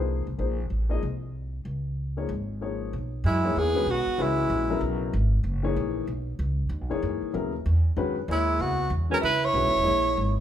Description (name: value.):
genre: modal jazz.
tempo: 190 BPM.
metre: 4/4.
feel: swing 63% on 8ths.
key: F# mixolydian.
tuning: A4 = 437 Hz.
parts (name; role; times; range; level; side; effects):
warm grand piano; accompaniment; 0.0-10.3 s; C#3 to Eb5; -30 LUFS; left 6 dB; none.
upright bass; bass; 0.0-10.4 s; E1 to F#2; -27 LUFS; equal; none.
warm tenor saxophone; melody; 3.3-4.8, 8.3-10.4 s; E4 to C#5; -25 LUFS; right 1 dB; none.
breathy alto saxophone; second line; 3.3-4.8, 8.3-10.4 s; G#3 to E4; -32 LUFS; right 6 dB; none.
room: moderate large studio reverb, RT60 1.1 s.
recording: band playing live in one room.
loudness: -24 LUFS.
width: side -10 dB against mid.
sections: 0.0-2.9 A section; 2.9-10.4 B section.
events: none.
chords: 0.0 Fm/Bb; 1.7 Db; 2.9 F#9sus4; 5.4 B/F#; 8.0 F#9sus4.